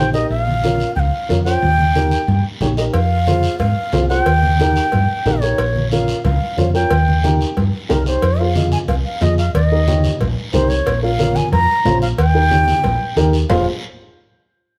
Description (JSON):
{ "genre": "latin, cumbia", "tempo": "182 BPM", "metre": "4/4", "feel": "straight", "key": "F minor", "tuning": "A4 = 441 Hz", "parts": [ { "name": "bansuri", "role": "melody", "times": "0.0-13.7 s", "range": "Bb4 to Bb5", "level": "-22 LUFS", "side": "equal", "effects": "none" }, { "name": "dark upright piano", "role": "accompaniment", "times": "0.0-13.7 s", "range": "Db4 to Eb5", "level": "-23 LUFS", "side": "equal", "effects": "none" }, { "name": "hollow-body short-scale fingered electric bass", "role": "bass", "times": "0.0-13.7 s", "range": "F1 to Ab2", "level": "-20 LUFS", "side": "equal", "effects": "none" }, { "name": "guiro", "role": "percussion", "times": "0.1-13.6 s", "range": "none", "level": "-34 LUFS", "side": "equal", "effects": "none" }, { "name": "congas", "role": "percussion", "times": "0.5-13.6 s", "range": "none", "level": "-25 LUFS", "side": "equal", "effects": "none" }, { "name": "cowbell and timbales", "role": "percussion", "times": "2.9-13.6 s", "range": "none", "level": "-28 LUFS", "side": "equal", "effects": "none" } ], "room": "moderate stone room reverb, RT60 1.1 s", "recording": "band playing live in one room", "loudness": "-16 LUFS", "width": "mono", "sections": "0.0-8.2 A section; 8.2-13.5 B section; 13.5-14.8 C section", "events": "none", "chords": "0.3 Bbm; 1.6 Eb; 2.9 Fm; 4.3 Eb; 5.6 Bbm; 6.9 Eb; 8.2 Fm; 9.5 Eb; 10.9 Bbm; 12.2 Eb; 13.5 Fm", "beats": "| 0.30 0.63 0.96 1.29 | 1.62 1.96 2.29 2.62 | 2.94 3.27 3.60 3.94 | 4.26 4.59 4.92 5.25 | 5.59 5.92 6.25 6.58 | 6.91 7.24 7.57 7.90 | 8.23 8.56 8.89 9.22 | 9.55 9.88 10.21 10.54 | 10.87 11.19 11.52 11.85 | 12.18 12.51 12.84 13.17 | 13.50" }